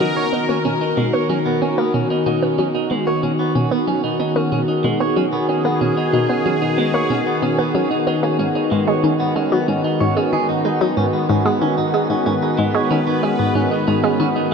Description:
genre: ambient, sequencer-driven space music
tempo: 93 BPM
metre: 4/4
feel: straight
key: unclear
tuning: A4 = 440 Hz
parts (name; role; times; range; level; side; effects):
- sweeping resonant pad; sustained chords; 0.0-14.5 s; D#3 to B4; -19 LUFS; left 1 dB; chorus
- clean electric guitar; arpeggios; 0.0-14.5 s; G#3 to C#5; -23 LUFS; right 3 dB; auto-pan, analog delay
- analog pluck; riff; 0.0-14.3 s; G#2 to B3; -21 LUFS; left 1 dB; chorus, analog delay
room: wet huge ambient reverb, RT60 7.7 s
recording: none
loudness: -16 LUFS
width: side -6 dB against mid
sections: 0.0-14.5 A section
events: filter sweep on synth arpeggio sound 0.0-14.5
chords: 0.0 Bmaj7; 8.4 G#m7

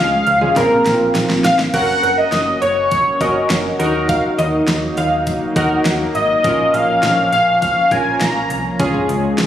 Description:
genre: synth-pop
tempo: 102 BPM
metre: 4/4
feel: straight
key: Bb minor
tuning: A4 = 442 Hz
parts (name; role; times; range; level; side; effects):
- octave-doubled lead; melody; 0.0-8.7 s; Bb4 to Bb5; -15 LUFS; left 1 dB; chorus, phaser, analog delay
- warm analog keys; accompaniment; 0.0-9.5 s; Ab3 to Bb4; -20 LUFS; equal; chorus
- chorused pulse-width pad; sustained chords; 0.0-9.5 s; F3 to Eb4; -22 LUFS; equal; none
- slap-like FM bass; bass; 0.0-9.5 s; Gb1 to Eb2; -25 LUFS; equal; none
- pop drum kit; drums; 0.3-9.5 s; crash cymbal, hi-hat, kick drum, snare drum, toms; -22 LUFS; equal; none
- funky polysynth comp; second line; 1.7-6.0 s; Bb4 to Gb5; -22 LUFS; right 1 dB; chorus, analog delay
room: moderate lush hall reverb, RT60 2.8 s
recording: recorded on a phone in the room, studio reverb, compression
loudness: -13 LUFS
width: side -10 dB against mid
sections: 0.0-1.7 A section; 1.7-9.5 B section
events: drum fill 0.6-1.7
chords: 0.0 Db; 0.6 Bbsus2; 1.7 Gb; 3.8 Ebm; 6.4 Bbm; 8.8 Db

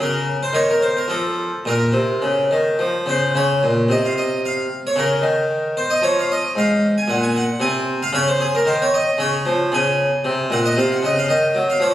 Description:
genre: classical, baroque-style suite movement for harpsichord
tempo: 105-117 BPM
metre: 3/4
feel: rubato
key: Bb minor, Db major from 3.3 s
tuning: A4 = 440 Hz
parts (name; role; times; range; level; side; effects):
- harpsichord; solo; 0.0-11.9 s; Ab2 to Ab5; -16 LUFS; equal; none
room: wet recital hall reverb, RT60 1.4 s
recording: recorded on a phone in the room, studio reverb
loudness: -16 LUFS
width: side -13 dB against mid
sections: 0.0-3.3 A section; 3.3-11.9 A section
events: none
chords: 0.0 N.C.; 1.7 Bbm; 5.0 Bbm/Db; 6.5 Ab; 8.1 Db; 9.7 Db5; 11.3 Ebm

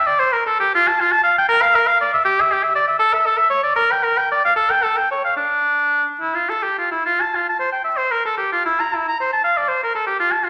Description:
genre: classical, baroque-style fantasia for unaccompanied oboe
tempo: 69-82 BPM (dotted quarters)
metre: 6/8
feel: rubato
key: D minor, F major from 7.1 s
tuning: A4 = 437 Hz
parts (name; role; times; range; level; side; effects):
- clear oboe; solo; 0.0-10.5 s; D4 to Bb5; -18 LUFS; equal; none
room: wet recital hall reverb, RT60 1.4 s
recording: vinyl crackle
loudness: -18 LUFS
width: mono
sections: 0.0-7.1 A section; 7.1-10.5 A section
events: none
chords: none

